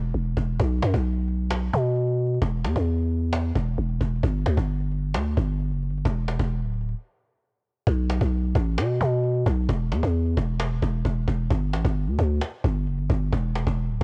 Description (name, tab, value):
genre	hip hop, trap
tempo	132 BPM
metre	4/4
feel	half-time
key	unclear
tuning	A4 = 440 Hz
part	growling 808-style bass	bass	0.0-14.0 s	D1 to B2	-25 LUFS	equal	none
part	cajon	drums	0.0-14.0 s	none	-32 LUFS	equal	none
room	small room ambience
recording	worn, warbling old tape, cassette tape, warbly pitch drift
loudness	-25 LUFS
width	mono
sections	0.0-7.9 A section; 7.9-14.0 B section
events	break 7.0-7.9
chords	none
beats	0.14 | 0.60 1.05 1.51 1.96 | 2.42 2.87 3.33 3.78 | 4.23 4.69 5.14 5.60 | 6.05 6.51 6.96 7.42 | 7.87 8.32 8.78 9.23 | 9.69 10.14 10.60 11.05 | 11.51 11.96 12.42 12.87 | 13.32 13.78